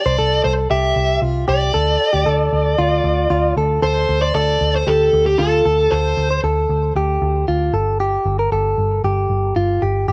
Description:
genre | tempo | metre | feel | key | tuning
jangly indie pop | 115 BPM | 4/4 | straight | D minor | A4 = 440 Hz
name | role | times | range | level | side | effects
dark smooth lead guitar | melody | 0.0-6.4 s | G4 to E5 | -21 LUFS | equal | overdrive
direct-recorded clean electric guitar | arpeggios | 0.0-10.1 s | F4 to C5 | -22 LUFS | equal | cassette tape
vintage muted picked electric bass | bass | 0.1-10.1 s | G1 to D2 | -22 LUFS | equal | none
room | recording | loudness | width
light reverb | home recording on cassette | -17 LUFS | mono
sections
0.0-3.8 A section; 3.8-10.1 B section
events
none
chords
0.0 C; 1.7 Dm; 3.8 Dm7; 7.7 N.C.

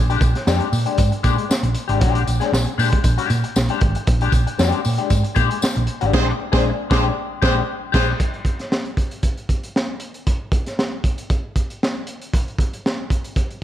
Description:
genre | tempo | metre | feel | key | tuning
funk | 116 BPM | 4/4 | straight | Bb mixolydian | A4 = 440 Hz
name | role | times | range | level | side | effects
hollow-body short-scale fingered electric bass | bass | 0.0-8.1 s | Ab1 to Bb2 | -20 LUFS | right 1 dB | none
electric guitar at the edge of break-up | accompaniment | 0.1-8.1 s | Ab3 to Ab4 | -23 LUFS | left 9 dB | wah, spring reverb
crunchy breakbeat drum kit | drums | 0.1-13.6 s | crash cymbal, hi-hat, kick drum, snare drum | -20 LUFS | right 1 dB | none
tambourine | percussion | 0.2-5.7 s | none | -32 LUFS | left 3 dB | none
warm horn section | second line | 6.1-8.1 s | C4 to C5 | -25 LUFS | right 3 dB | none
room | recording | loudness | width
light reverb | none | -17 LUFS | side -11 dB against mid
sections
0.0-8.2 A section; 8.2-13.6 B section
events
band accent 6.1-8.2; silent gap 7.7-8.2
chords
0.0 Bb13; 8.2 N.C.

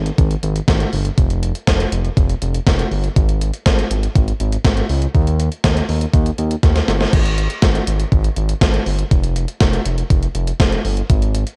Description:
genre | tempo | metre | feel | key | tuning
synth-pop | 121 BPM | 4/4 | straight | unclear | A4 = 440 Hz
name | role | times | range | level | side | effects
smooth synth bass | bass | 0.0-11.4 s | F1 to Eb2 | -21 LUFS | equal | none
gated 80s digital drum machine | drums | 0.1-11.6 s | crash cymbal, hi-hat, kick drum, snare drum | -19 LUFS | equal | gated reverb, gated reverb snare, overdrive
room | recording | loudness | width
light reverb | worn, warbling old tape, cassette tape, warbly pitch drift | -17 LUFS | mono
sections
0.0-7.1 A section; 7.1-11.6 A section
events
drum fill 6.6-7.1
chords
none

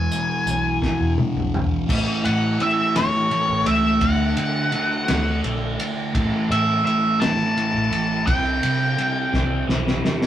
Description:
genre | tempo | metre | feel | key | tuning
psychedelic rock | 56 BPM (dotted quarters) | 6/8 | straight | unclear | A4 = 440 Hz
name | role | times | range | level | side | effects
octave-fuzz lead guitar | melody | 0.0-9.6 s | C#5 to A5 | -22 LUFS | equal | distortion
thick fuzz guitar | riff | 0.0-10.3 s | E2 to D4 | -23 LUFS | equal | distortion, phaser
vintage muted fingered electric bass | bass | 0.0-10.0 s | A1 to D3 | -26 LUFS | equal | none
cloth-damped thuddy drum kit | drums | 0.1-10.3 s | crash cymbal, hi-hat, kick drum, ride cymbal, snare drum, toms | -25 LUFS | equal | none
room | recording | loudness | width
moderate studio reverb, RT60 0.6 s | rough rehearsal-room recording | -18 LUFS | side -11 dB against mid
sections
0.0-1.9 A section; 1.9-10.3 B section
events
drum fill 0.8-1.9, 9.3-10.3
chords
0.0 E; 1.9 A; 4.0 D; 6.1 A5; 8.3 C5

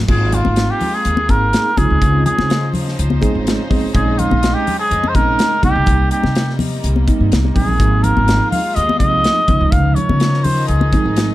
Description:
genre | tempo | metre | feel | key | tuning
electric jazz fusion | 125 BPM | 4/4 | straight | unclear | A4 = 444 Hz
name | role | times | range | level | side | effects
rich chamber string section | sustained chords | 0.0-11.3 s | C3 to C5 | -27 LUFS | left 2 dB | none
upright bass | bass | 0.0-11.3 s | Ab1 to Db3 | -17 LUFS | equal | none
trumpet with cup mute | melody | 0.1-11.3 s | F4 to F5 | -18 LUFS | equal | plate reverb
tine electric piano | accompaniment | 0.1-11.3 s | C3 to Ab4 | -21 LUFS | right 5 dB | medium tremolo, wide subtle chorus, plate reverb
modern studio drum kit | drums | 0.1-11.3 s | crash cymbal, hi-hat, kick drum, snare drum | -19 LUFS | equal | none
congas | percussion | 0.3-11.0 s | none | -22 LUFS | left 4 dB | none
room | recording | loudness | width
light reverb | dark, warm production | -13 LUFS | side -15 dB against mid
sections
0.1-11.3 A section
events
drum fill 7.3-7.8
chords
0.1 Ab69; 1.8 Dbmaj9; 3.9 Bbm11; 5.6 Cm7; 7.8 Ab69; 9.5 Dbmaj9

